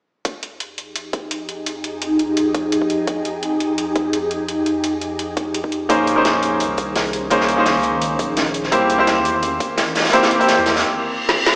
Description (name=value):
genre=liquid drum and bass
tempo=170 BPM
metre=4/4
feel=swing 54% on 16ths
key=F minor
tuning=A4 = 440 Hz
part: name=ethereal airy pad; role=sustained chords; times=1.2-11.5 s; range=F2 to C5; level=-22 LUFS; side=equal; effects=ensemble chorus, built-in reverb, phaser, sidechain pumping
part: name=drum and bass drum kit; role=drums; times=0.2-11.5 s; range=hi-hat, snare drum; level=-24 LUFS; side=equal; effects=none
part: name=electronic kick drum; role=drums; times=0.2-9.7 s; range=none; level=-24 LUFS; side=equal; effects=high-pass filter on kick, high-pass filter on room
part: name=bright baby grand piano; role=accompaniment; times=5.9-11.6 s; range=Bb3 to C5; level=-16 LUFS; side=equal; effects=digital delay
part: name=warm sub bass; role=bass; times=5.9-10.8 s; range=Bb1 to E2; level=-32 LUFS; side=equal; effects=tube saturation
part: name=crunchy breakbeat drum kit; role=drums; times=5.9-10.8 s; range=hi-hat, snare drum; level=-21 LUFS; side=equal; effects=high-pass filter on hats, high-pass filter on snare, high-pass filter on room
part: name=reverse cymbal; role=sound effects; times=11.0-11.5 s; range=none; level=-20 LUFS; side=equal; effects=none
room=wet lush hall reverb, RT60 1.6 s, small room ambience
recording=played on a big sound system in a bare room, stone room reverb, small speaker sound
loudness=-16 LUFS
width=side -37 dB against mid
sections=0.3-11.5 A section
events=break 10.8-11.5; reverse cymbal 11.0-11.5; drum fill 11.3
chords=0.3 Fm9; 5.9 Bbm11; 8.7 C7